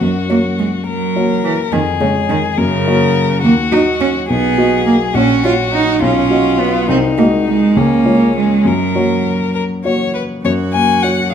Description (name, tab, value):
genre	quick classical-period movement for piano trio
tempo	69 BPM (dotted quarters)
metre	6/8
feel	straight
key	F# major from 3.4 s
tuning	A4 = 440 Hz
part	rich violin	melody	0.0-11.3 s	C#4 to G#5	-18 LUFS	left 8 dB	none
part	rich cello	second line	0.0-11.3 s	C#3 to F#4	-16 LUFS	right 5 dB	none
part	dark baby grand piano	accompaniment	0.0-11.3 s	A#1 to D#5	-16 LUFS	left 1 dB	none
room	wet recital hall reverb, RT60 1.4 s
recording	minimal, uncompressed stereo recording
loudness	-12 LUFS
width	side -8 dB against mid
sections	0.0-10.4 A section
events	none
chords	0.0 F#; 1.7 C#/E#; 2.6 F#; 3.4 D#m; 4.3 B; 5.2 F#/A#; 6.0 B; 6.9 G#7/B#; 7.8 C#; 8.7 F#